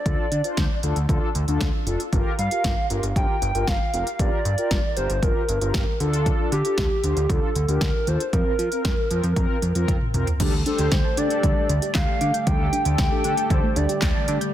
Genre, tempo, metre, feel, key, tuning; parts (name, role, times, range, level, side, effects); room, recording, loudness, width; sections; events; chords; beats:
synth-pop; 116 BPM; 4/4; straight; A4 = 440 Hz
hollow clarinet-like synth lead; melody; 0.0-14.4 s; G4 to G5; -26 LUFS; right 1 dB; chorus, digital delay
mellow synth brass; accompaniment; 0.1-13.6 s; C4 to C5; -29 LUFS; left 2 dB; chorus
fat analog bass; bass; 0.1-14.4 s; F1 to F3; -24 LUFS; equal
deep house drum kit; drums; 0.1-14.5 s; crash cymbal, handclaps, hi-hat, kick drum, snare drum, toms; -24 LUFS; equal
chorused pulse-width pad; sustained chords; 10.4-14.5 s; D3 to G4; -30 LUFS; left 1 dB
soft round pluck; arpeggios; 10.4-14.5 s; G3 to G6; -31 LUFS; right 2 dB; chorus, digital delay
light reverb; dense, heavily limited modern master; -20 LUFS; side -12 dB against mid
0.0-10.4 A section; 10.4-14.5 B section
drum fill 9.9-10.4
0.0 Dm; 2.1 Gm7; 6.0 Dm; 8.3 Fsus4; 10.4 Dsus4
| 0.06 0.57 1.09 1.61 | 2.12 2.64 3.16 3.68 | 4.19 4.71 5.23 5.75 | 6.26 6.78 7.30 7.82 | 8.33 8.85 9.37 9.88 | 10.40 10.92 11.44 11.95 | 12.47 12.99 13.51 14.02